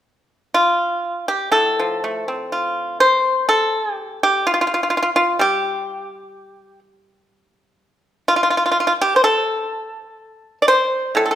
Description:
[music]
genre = chinese traditional, Chinese solo plucked strings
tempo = 59-65 BPM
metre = 4/4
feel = rubato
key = unclear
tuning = A4 = 439 Hz
[part]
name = pipa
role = solo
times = 0.5-11.4 s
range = A2 to D5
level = -16 LUFS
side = equal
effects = none
[sound]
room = moderate recital hall reverb, RT60 1.5 s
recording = minimal, uncompressed stereo recording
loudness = -16 LUFS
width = side -11 dB against mid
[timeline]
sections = 0.0-11.4 A section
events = none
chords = none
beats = 0.54 1.54 2.52 | 3.50 4.47 5.40 6.34 | 7.30 8.25 9.21 10.18 | 11.16

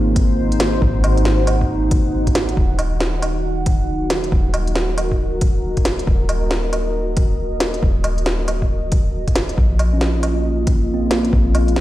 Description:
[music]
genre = future garage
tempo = 137 BPM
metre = 4/4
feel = swing 63% on 16ths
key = Eb dorian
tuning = A4 = 439 Hz
[part]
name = mellow tine electric piano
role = accompaniment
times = 0.0-2.6, 9.9-11.8 s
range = Bb3 to F4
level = -24 LUFS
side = right 2 dB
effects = medium stereo tremolo, vintage 12-bit sampler grit, sidechain pumping, analog delay
[part]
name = deep dark ambient pad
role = sustained chords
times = 0.0-11.8 s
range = Bb3 to Gb5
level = -23 LUFS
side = equal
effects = chorus, built-in reverb, sidechain pumping
[part]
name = soft 808-style bass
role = bass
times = 0.0-11.8 s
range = Eb1 to Bb1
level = -20 LUFS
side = equal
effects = sidechain pumping
[part]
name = electronic kick drum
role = drums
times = 0.2-11.4 s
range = none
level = -18 LUFS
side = equal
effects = overdrive
[part]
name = organic electronic drum kit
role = drums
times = 0.2-11.8 s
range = hi-hat, snare drum, woodblock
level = -23 LUFS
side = equal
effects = overdrive
[sound]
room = light reverb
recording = played on a big sound system in a bare room, large studio reverb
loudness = -16 LUFS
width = side -15 dB against mid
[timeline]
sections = 0.0-2.6 A section; 2.6-11.8 B section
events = none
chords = 0.0 Ab7; 2.6 Ebm; 9.6 Bbm7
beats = 0.38 | 0.82 1.25 1.69 2.13 | 2.57 3.01 3.44 3.88 | 4.32 4.76 5.20 5.63 | 6.07 6.51 6.95 7.39 | 7.83 8.26 8.70 9.14 | 9.58 10.01 10.45 10.89 | 11.33 11.77

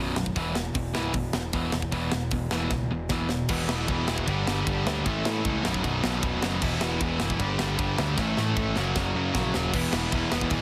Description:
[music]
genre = punk rock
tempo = 153 BPM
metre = 4/4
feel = straight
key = unclear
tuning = A4 = 437 Hz
[part]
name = distorted electric guitar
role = riff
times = 0.0-10.6 s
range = B1 to A3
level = -33 LUFS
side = equal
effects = overdrive
[part]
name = sludgy distorted guitar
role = riff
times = 0.0-10.6 s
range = B1 to A3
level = -33 LUFS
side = equal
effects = overdrive
[part]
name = picked electric bass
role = bass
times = 0.0-10.6 s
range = B0 to A2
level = -35 LUFS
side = equal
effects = none
[part]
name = tight metal drum kit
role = drums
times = 0.2-10.6 s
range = crash cymbal, hi-hat, kick drum, ride cymbal, snare drum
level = -33 LUFS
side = equal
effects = none
[part]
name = distorted electric guitar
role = riff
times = 3.5-10.6 s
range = B1 to A4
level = -35 LUFS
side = equal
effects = overdrive
[sound]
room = light reverb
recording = heavily compressed radio sound, multiband compression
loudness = -27 LUFS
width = mono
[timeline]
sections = 0.0-3.5 A section; 3.5-9.7 B section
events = drum fill 2.7-3.5, 8.2-9.7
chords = 0.4 E5; 3.5 E; 4.3 G; 5.1 A; 5.6 B; 6.6 E; 7.4 G; 8.2 A; 8.8 F#; 9.7 E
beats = | 0.36 0.75 1.14 1.53 | 1.92 2.32 2.71 3.10 | 3.49 3.88 4.27 4.67 | 5.06 5.45 5.84 6.23 | 6.62 7.01 7.40 7.79 | 8.18 8.57 8.96 9.35 | 9.73 10.12 10.51

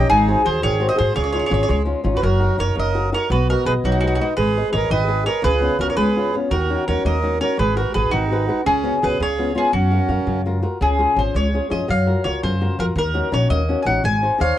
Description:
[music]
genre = italian folk, Italian serenade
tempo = 112 BPM (dotted quarters)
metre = 6/8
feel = straight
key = F# major, Db major from 10.8 s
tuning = A4 = 445 Hz
[part]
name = mandolin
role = melody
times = 0.0-14.6 s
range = F#4 to Ab5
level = -22 LUFS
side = left 1 dB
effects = none
[part]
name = accordion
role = second line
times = 0.0-10.4, 14.4-14.6 s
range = C#4 to Db5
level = -24 LUFS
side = right 8 dB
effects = none
[part]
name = flamenco guitar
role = accompaniment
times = 0.0-14.6 s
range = Db3 to E#5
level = -22 LUFS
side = left 3 dB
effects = none
[part]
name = upright bass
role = bass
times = 0.0-14.5 s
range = F#1 to Ab2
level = -21 LUFS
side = equal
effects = none
[sound]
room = little or no reverb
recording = dry, close 1970s-style studio recording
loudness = -17 LUFS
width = side -12 dB against mid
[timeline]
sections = 0.0-2.2 A section; 2.2-10.8 B section; 10.8-14.6 A section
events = none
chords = 0.1 Ab7; 1.2 Dbadd9; 2.2 F#6; 3.3 B; 4.4 G#m; 5.4 C#7; 6.5 D#m7; 7.6 G#m7; 8.7 C#7sus4; 9.2 C#7; 9.7 F#maj7; 10.8 Db; 11.9 Gbmaj7; 13.0 Ebm7; 14.0 Ab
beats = | 0.10 0.63 | 1.16 1.69 | 2.22 2.76 | 3.30 3.83 | 4.37 4.90 | 5.43 5.97 | 6.51 7.05 | 7.59 8.12 | 8.66 9.20 | 9.73 10.27 | 10.81 11.35 | 11.89 12.43 | 12.96 13.50 | 14.04 14.58

